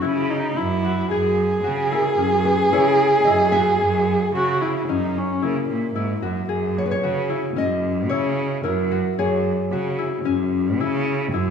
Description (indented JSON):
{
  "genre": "contemporary instrumental, chamber music in an uneven meter",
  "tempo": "112 BPM",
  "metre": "5/4",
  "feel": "straight",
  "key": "F# mixolydian",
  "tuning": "A4 = 440 Hz",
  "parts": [
    { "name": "nylon-string guitar", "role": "melody", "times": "0.0-10.8 s", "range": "G#4 to E5", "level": "-26 LUFS", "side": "equal", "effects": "none" },
    { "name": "dark viola", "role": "second line", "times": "0.0-6.2 s", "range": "A#3 to G#4", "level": "-20 LUFS", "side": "right 1 dB", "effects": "none" },
    { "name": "concert harp", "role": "arpeggios", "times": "0.0-11.5 s", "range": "C#4 to G#4", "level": "-24 LUFS", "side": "left 8 dB", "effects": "none" },
    { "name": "clear cello", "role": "bass", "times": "0.0-11.5 s", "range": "F#2 to C#3", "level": "-24 LUFS", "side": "right 4 dB", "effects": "none" }
  ],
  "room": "wet recital hall reverb, RT60 1.4 s",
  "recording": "small room ambience",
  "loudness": "-18 LUFS",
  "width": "side -7 dB against mid",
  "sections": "0.0-6.5 A section; 6.5-11.5 B section",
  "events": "none",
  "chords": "0.0 F#9; 6.5 F#7(no3)"
}